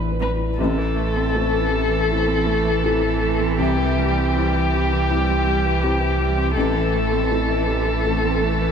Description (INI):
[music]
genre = neoclassical piano and strings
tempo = 80 BPM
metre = 4/4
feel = rubato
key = A minor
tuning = A4 = 440 Hz
[part]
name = felt-muted upright piano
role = accompaniment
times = 0.0-8.7 s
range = A1 to B4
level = -25 LUFS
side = left 4 dB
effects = lush chorus
[part]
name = sub bass with octave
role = bass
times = 0.0-8.7 s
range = A1 to C2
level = -24 LUFS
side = equal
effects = none
[part]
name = muted violin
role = melody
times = 0.2-8.7 s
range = G4 to B4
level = -22 LUFS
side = left 3 dB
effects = tape echo
[part]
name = muted cello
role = second line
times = 0.2-8.7 s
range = E3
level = -27 LUFS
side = right 6 dB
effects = tape echo
[part]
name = muted viola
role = accompaniment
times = 0.2-8.7 s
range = C3 to C4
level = -27 LUFS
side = right 5 dB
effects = none
[sound]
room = moderate lush hall reverb, RT60 3.3 s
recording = dreamy mix soaked in reverb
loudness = -18 LUFS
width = side -7 dB against mid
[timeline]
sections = 0.6-8.7 A section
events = none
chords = 0.0 Amadd9; 0.6 Am; 3.6 C; 6.6 Am